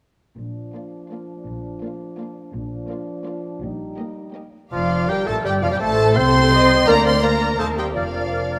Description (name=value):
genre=quick classical-period movement for symphony orchestra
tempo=167 BPM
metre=3/4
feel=straight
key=Bb major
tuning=A4 = 436 Hz
part: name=dark French horn section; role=sustained chords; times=0.4-8.6 s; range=F3 to Eb4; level=-28 LUFS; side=equal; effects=none
part: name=dark studio double bass section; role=bass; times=0.4-8.6 s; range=F1 to Eb2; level=-28 LUFS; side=equal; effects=none
part: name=warm studio cello section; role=bass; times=0.4-8.6 s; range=D2 to C3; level=-28 LUFS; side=equal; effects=none
part: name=warm studio violin section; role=second line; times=0.7-8.6 s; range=Bb3 to C5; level=-32 LUFS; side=equal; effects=none
part: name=dark studio viola section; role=accompaniment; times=0.7-8.6 s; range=Bb3 to Eb5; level=-29 LUFS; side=equal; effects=none
part: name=warm studio violin section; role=melody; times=0.8-8.6 s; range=D5 to C6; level=-26 LUFS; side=equal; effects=none
part: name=dark clarinet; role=second line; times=4.7-8.6 s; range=F4 to C5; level=-28 LUFS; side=equal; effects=none
part: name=silver concert flute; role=second line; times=4.7-8.6 s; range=F5 to F6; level=-30 LUFS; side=equal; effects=none
part: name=warm oboe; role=second line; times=4.7-8.6 s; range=F4 to D5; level=-29 LUFS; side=equal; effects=none
part: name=clear bassoon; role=accompaniment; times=4.7-8.6 s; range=F3 to C4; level=-29 LUFS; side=equal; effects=none
room=wet scoring stage reverb, RT60 1.9 s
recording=none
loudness=-18 LUFS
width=mono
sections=0.4-4.7 A section; 4.7-8.6 B section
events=none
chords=0.4 Bb; 3.6 Eb/Bb; 4.7 Bb/F; 5.8 Adim; 6.9 Bb/D; 7.6 Cm7/Eb; 8.0 Bb/F